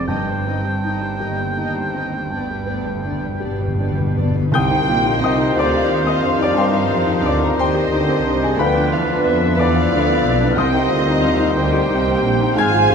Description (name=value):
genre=classical, romantic movement for piano and orchestra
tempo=50-61 BPM (dotted quarters)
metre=12/8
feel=rubato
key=C minor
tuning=A4 = 440 Hz
part: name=muted symphonic violin section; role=melody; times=0.0-12.9 s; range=B4 to G5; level=-26 LUFS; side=left 3 dB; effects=none
part: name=warm baby grand piano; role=melody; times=0.0-12.9 s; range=C2 to Ab6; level=-20 LUFS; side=left 1 dB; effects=none
part: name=clear oboe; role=second line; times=0.0-12.9 s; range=B4 to G5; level=-27 LUFS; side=right 1 dB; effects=none
part: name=muted symphonic violin section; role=second line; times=0.0-12.9 s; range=B3 to Ab5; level=-27 LUFS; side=left 1 dB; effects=none
part: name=muted symphonic viola section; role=accompaniment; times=0.0-12.9 s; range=Eb3 to G4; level=-27 LUFS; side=right 1 dB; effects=none
part: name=muted symphonic cello section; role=bass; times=0.1-12.9 s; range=D2 to G3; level=-26 LUFS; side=right 2 dB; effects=none
part: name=muted symphonic double bass section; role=bass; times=0.1-12.9 s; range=F1 to G2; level=-24 LUFS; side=right 3 dB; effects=none
part: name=timpani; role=percussion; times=0.1-11.5 s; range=G2 to C3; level=-25 LUFS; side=left 2 dB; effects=none
part: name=mellow bassoon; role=accompaniment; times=4.5-12.9 s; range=D3 to F3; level=-28 LUFS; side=right 2 dB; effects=none
part: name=mellow French horn section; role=sustained chords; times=4.5-12.9 s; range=Eb3 to C4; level=-25 LUFS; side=left 3 dB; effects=none
part: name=mellow clarinet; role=second line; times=4.6-12.9 s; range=F4 to Ab4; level=-29 LUFS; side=equal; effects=none
part: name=mellow large flute ensemble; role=second line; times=4.6-12.9 s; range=Ab4 to Ab5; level=-26 LUFS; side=right 1 dB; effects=none
room=moderate scoring stage reverb, RT60 2.1 s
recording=none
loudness=-15 LUFS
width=side -6 dB against mid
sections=0.0-4.5 A section; 4.5-12.9 B section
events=timpani fill 2.3-4.5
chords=0.1 Cm/G; 2.3 G; 4.5 Cm; 8.6 Bdim/D; 10.6 Cm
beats=| 0.09 1.21 2.33 3.44 | 4.54 5.57 6.58 7.58 | 8.58 9.58 10.56 11.56 | 12.56